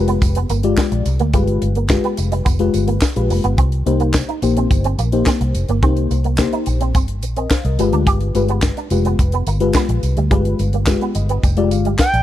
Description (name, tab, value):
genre	early-eighties boogie funk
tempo	107 BPM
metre	4/4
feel	straight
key	unclear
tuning	A4 = 440 Hz
part	FM electric piano with soft pad layer	accompaniment	0.0-12.2 s	Ab3 to Ab5	-20 LUFS	left 4 dB	chorus
part	vintage muted fingered electric bass	bass	0.0-12.2 s	F1 to D2	-18 LUFS	equal	none
part	electric guitar with an envelope filter	riff	0.1-12.0 s	G3 to G4	-24 LUFS	right 7 dB	ensemble chorus
part	tight funk drum kit	drums	0.1-12.2 s	handclaps, hi-hat, kick drum, snare drum	-18 LUFS	equal	none
part	tambourine	percussion	0.2-12.1 s	none	-33 LUFS	right 17 dB	none
part	expressive synth lead	melody	12.0-12.2 s	G5	-15 LUFS	right 2 dB	chorus
room	small room ambience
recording	dry, close 1970s-style studio recording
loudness	-14 LUFS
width	side -12 dB against mid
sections	0.0-12.2 A section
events	FM electric piano fill 10.9-12.2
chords	0.0 G7b9; 3.6 Cm7; 7.8 G7b9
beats	0.22 0.78 | 1.34 1.90 2.46 3.02 | 3.58 4.14 4.70 5.26 | 5.83 6.39 6.95 7.51 | 8.07 8.63 9.19 9.75 | 10.31 10.87 11.43 11.99